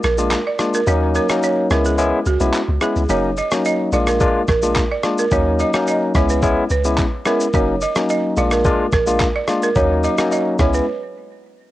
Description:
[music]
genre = afrobeats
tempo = 108 BPM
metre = 4/4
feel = straight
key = unclear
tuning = A4 = 442 Hz
[part]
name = balafon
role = riff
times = 0.0-10.8 s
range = F#4 to D#5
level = -21 LUFS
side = right 5 dB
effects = cassette tape, tape echo
[part]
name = deep log drum bass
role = bass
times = 0.0-10.8 s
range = F#1 to D#2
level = -21 LUFS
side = equal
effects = none
[part]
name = dusty soul sampler-style drum kit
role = drums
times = 0.0-10.9 s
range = handclaps, kick drum, rim click, shaker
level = -22 LUFS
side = equal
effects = cassette tape
[part]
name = barky tine electric piano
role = accompaniment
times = 0.2-10.9 s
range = F#3 to E#4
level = -19 LUFS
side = left 2 dB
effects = cassette tape, plate reverb
[part]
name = agogo bells and woodblock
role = percussion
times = 0.2-10.7 s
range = none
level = -31 LUFS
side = left 6 dB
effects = none
[sound]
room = light reverb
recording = home recording on cassette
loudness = -15 LUFS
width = side -15 dB against mid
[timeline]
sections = 0.0-11.7 A section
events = break 0.0-3.1, 10.9-11.7; kick muted 3.1-4.2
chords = 0.0 A#7; 0.9 D#m7; 1.7 C#m7; 3.1 F#6; 3.9 A#7; 5.3 D#m7; 6.2 C#m7; 7.5 F#6; 8.4 A#7; 9.8 D#m7; 10.6 C#m7

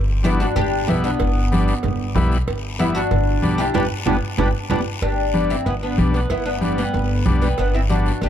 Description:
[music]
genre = latin, cumbia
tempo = 188 BPM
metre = 4/4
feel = straight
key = G major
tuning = A4 = 440 Hz
[part]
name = upright bass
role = bass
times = 0.0-8.3 s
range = G1 to B1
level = -21 LUFS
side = equal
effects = none
[part]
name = oud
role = melody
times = 0.2-8.3 s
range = G3 to G4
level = -24 LUFS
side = left 2 dB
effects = none
[part]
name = combo organ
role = accompaniment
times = 0.2-8.1 s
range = G3 to E4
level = -26 LUFS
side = left 3 dB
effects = none
[part]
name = congas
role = percussion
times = 0.2-8.1 s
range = none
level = -24 LUFS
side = right 1 dB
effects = none
[part]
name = guiro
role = percussion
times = 0.2-8.3 s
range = none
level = -35 LUFS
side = left 6 dB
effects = none
[part]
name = clear clarinet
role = second line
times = 0.3-8.3 s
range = G3 to D4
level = -29 LUFS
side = right 4 dB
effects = none
[part]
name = cowbell and timbales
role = percussion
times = 0.6-8.3 s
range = none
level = -30 LUFS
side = right 8 dB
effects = none
[sound]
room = light reverb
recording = dark, warm production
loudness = -17 LUFS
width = side -10 dB against mid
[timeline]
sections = 0.0-5.0 A section; 5.0-8.3 B section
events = band accent 3.7-5.0; drum fill 4.1-5.0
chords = 0.0 G

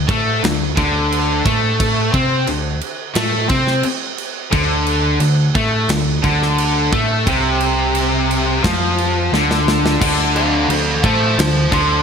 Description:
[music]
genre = hard rock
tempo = 88 BPM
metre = 4/4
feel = straight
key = unclear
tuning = A4 = 441 Hz
[part]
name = tight distorted guitar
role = riff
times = 0.0-12.0 s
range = C3 to C4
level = -20 LUFS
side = left 10 dB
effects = distortion
[part]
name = picked electric bass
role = bass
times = 0.0-12.0 s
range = C2 to C3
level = -20 LUFS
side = equal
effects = none
[part]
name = high-gain distorted guitar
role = riff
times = 0.1-12.0 s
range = C3 to C4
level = -23 LUFS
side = right 1 dB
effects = distortion
[part]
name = tight distorted guitar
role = riff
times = 0.1-12.0 s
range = C3 to C4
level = -22 LUFS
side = right 10 dB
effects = distortion
[part]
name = tight metal drum kit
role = drums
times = 0.1-11.9 s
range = crash cymbal, kick drum, snare drum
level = -20 LUFS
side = right 1 dB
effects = gated reverb
[part]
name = dark smooth lead guitar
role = melody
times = 10.4-12.0 s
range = A4 to C6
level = -18 LUFS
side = right 1 dB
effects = overdrive
[sound]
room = light reverb, small room ambience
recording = bright 1980s-style digital production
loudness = -14 LUFS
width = side -6 dB against mid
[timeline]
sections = 0.0-10.0 A section; 10.0-12.0 B section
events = drum fill 9.3-10.0; lead electric guitar solo 10.0-12.0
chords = 0.0 D5

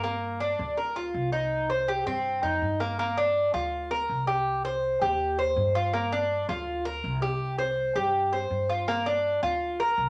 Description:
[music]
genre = latin, Cuban son and guajira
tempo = 163 BPM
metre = 4/4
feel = straight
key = G minor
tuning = A4 = 440 Hz
[part]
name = Cuban tres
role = arpeggios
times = 0.0-10.1 s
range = Bb3 to C5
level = -28 LUFS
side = equal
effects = none
[part]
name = upright bass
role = bass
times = 0.0-10.1 s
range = C2 to G2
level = -36 LUFS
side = equal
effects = none
[sound]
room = wet club reverb, RT60 0.7 s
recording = none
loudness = -28 LUFS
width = mono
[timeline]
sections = 0.0-3.0 A section; 3.0-10.1 B section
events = none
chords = 0.0 Gm7; 1.5 Cm7; 3.0 Gm7; 4.5 Cm; 5.9 Gm7; 7.4 C5; 8.9 Gm7

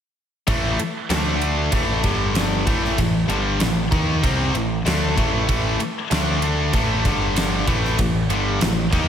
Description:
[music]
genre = hard rock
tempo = 96 BPM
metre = 4/4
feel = straight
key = unclear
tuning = A4 = 444 Hz
[part]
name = high-gain distorted guitar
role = riff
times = 0.5-9.1 s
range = G2 to D#4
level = -23 LUFS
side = left 8 dB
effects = distortion
[part]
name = tight distorted guitar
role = riff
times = 0.5-9.1 s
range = G2 to D#4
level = -24 LUFS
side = right 8 dB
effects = distortion, slapback echo
[part]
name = growling picked electric bass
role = bass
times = 0.5-9.1 s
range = G1 to D#2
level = -24 LUFS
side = equal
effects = overdrive
[part]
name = gated 80s drum kit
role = drums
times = 0.5-9.1 s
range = kick drum, ride cymbal, snare drum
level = -23 LUFS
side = equal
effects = none
[sound]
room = moderate concert hall reverb, RT60 2.1 s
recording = big arena sound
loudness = -18 LUFS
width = side -9 dB against mid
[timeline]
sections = 0.5-9.1 A section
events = none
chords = 0.5 A5; 1.1 D5; 1.7 A5; 2.0 G5; 2.7 A5; 6.1 D5; 6.7 A5; 7.0 G5; 7.7 A5

